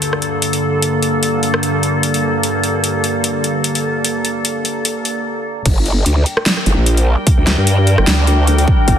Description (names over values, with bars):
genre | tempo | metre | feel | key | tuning
heavy wobble dubstep | 149 BPM | 4/4 | swing 55% on 16ths, half-time | G minor | A4 = 435 Hz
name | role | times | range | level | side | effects
evolving wavetable pad | sustained chords | 0.0-9.0 s | G2 to G5 | -17 LUFS | equal | chorus, built-in reverb, sidechain pumping
dubstep drum kit | drums | 0.0-9.0 s | crash cymbal, hi-hat, rim click, snare drum | -18 LUFS | left 1 dB | high-pass filter on hats, high-pass filter on toms, high-pass filter on snare, high-pass filter on cymbals
growl bass | bass | 5.7-9.0 s | G1 to G2 | -13 LUFS | equal | chorus, overdrive
electronic kick drum | drums | 5.7-9.0 s | none | -13 LUFS | equal | none
room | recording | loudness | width
moderate lush hall reverb, RT60 1.9 s | dense, heavily limited modern master, high-pass filter | -13 LUFS | side -9 dB against mid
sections
0.0-5.7 A section; 5.7-9.0 B section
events
build-up 0.0-5.7; stop 5.3-5.7; drop 5.7-9.0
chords
0.0 Gmadd9; 5.7 Gm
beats
0.02 0.42 | 0.82 1.23 1.63 2.03 | 2.44 2.84 3.24 3.64 | 4.04 4.45 4.85 5.25 | 5.66 6.06 6.46 6.86 | 7.27 7.67 8.07 8.47 | 8.88